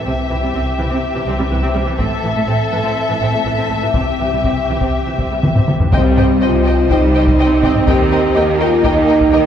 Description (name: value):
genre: cinematic, epic orchestral film score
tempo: 124 BPM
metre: 4/4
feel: straight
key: C minor from 5.9 s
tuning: A4 = 438 Hz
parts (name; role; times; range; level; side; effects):
- warm symphonic violin section; melody; 0.0-9.4 s; E5 to G5; -22 LUFS; left 3 dB; none
- warm symphonic violin section; second line; 0.0-9.4 s; G4 to Eb5; -23 LUFS; left 2 dB; none
- dark French horn section; sustained chords; 0.0-9.5 s; E3 to G4; -18 LUFS; equal; none
- rich symphonic viola section; accompaniment; 0.1-9.5 s; E3 to C4; -23 LUFS; right 1 dB; none
- clear symphonic double bass section; bass; 0.1-9.5 s; A1 to Eb2; -21 LUFS; right 1 dB; none
- warm symphonic cello section; bass; 0.1-9.5 s; A2 to Eb3; -23 LUFS; right 2 dB; none
- solo taiko drums; drums; 2.0-9.5 s; none; -18 LUFS; equal; none
- warm symphonic string section; sustained chords; 5.9-9.5 s; Eb4 to Eb5; -23 LUFS; right 1 dB; none
- timpani; percussion; 5.9-6.6 s; C3; -24 LUFS; left 1 dB; none
room: wet scoring stage reverb, RT60 1.6 s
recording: heard from further back in the room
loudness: -13 LUFS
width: side -9 dB against mid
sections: 0.0-5.9 A section; 5.9-9.5 B section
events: drum fill 5.4-5.9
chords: 0.1 C; 2.0 Am; 3.9 C; 5.9 Cm; 7.9 Eb